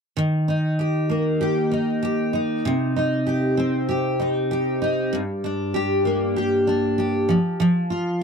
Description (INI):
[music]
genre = pop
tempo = 97 BPM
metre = 4/4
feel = swing 55% on 16ths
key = Eb major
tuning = A4 = 439 Hz
[part]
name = picked steel-string acoustic guitar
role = accompaniment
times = 0.2-8.2 s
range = G2 to G4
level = -20 LUFS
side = equal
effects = double-tracked left and right
[sound]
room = light reverb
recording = dry, close 1970s-style studio recording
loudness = -20 LUFS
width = side -6 dB against mid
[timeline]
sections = 0.2-8.2 A section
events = none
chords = 0.2 Eb; 2.7 Cm; 5.1 Gm; 7.3 Fsus2